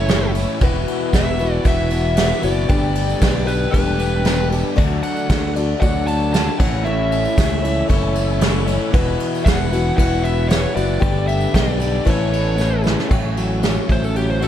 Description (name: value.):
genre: folk rock and heartland rock.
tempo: 115 BPM.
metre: 4/4.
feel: straight.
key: A mixolydian.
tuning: A4 = 440 Hz.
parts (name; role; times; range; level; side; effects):
nasal lead guitar with a parked wah; melody; 0.0-14.5 s; G4 to A5; -25 LUFS; equal; overdrive.
picked acoustic archtop guitar; accompaniment; 0.0-14.5 s; A2 to D5; -24 LUFS; left 7 dB; none.
tonewheel organ; sustained chords; 0.0-14.5 s; A3 to C#5; -33 LUFS; right 1 dB; none.
overdriven electric guitar; riff; 0.0-14.5 s; E2 to A4; -25 LUFS; right 2 dB; none.
modern bright fingered electric bass; bass; 0.0-14.5 s; E1 to D2; -21 LUFS; equal; none.
soft brush drum kit; drums; 0.1-14.5 s; crash cymbal, kick drum, ride cymbal, snare drum; -20 LUFS; right 1 dB; none.
tambourine; percussion; 0.1-14.5 s; none; -42 LUFS; right 8 dB; none.
room: small room ambience.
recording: dark, warm production.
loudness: -16 LUFS.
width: side -10 dB against mid.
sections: 0.0-13.1 A section; 13.1-14.5 B section.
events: drum fill 12.6-13.1; lead electric guitar solo 13.1-14.5.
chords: 0.0 A; 0.6 Esus2; 2.7 Gadd9; 4.8 D; 6.6 A; 8.9 Esus2; 11.0 Gadd9; 12.1 Aadd9; 13.1 A6.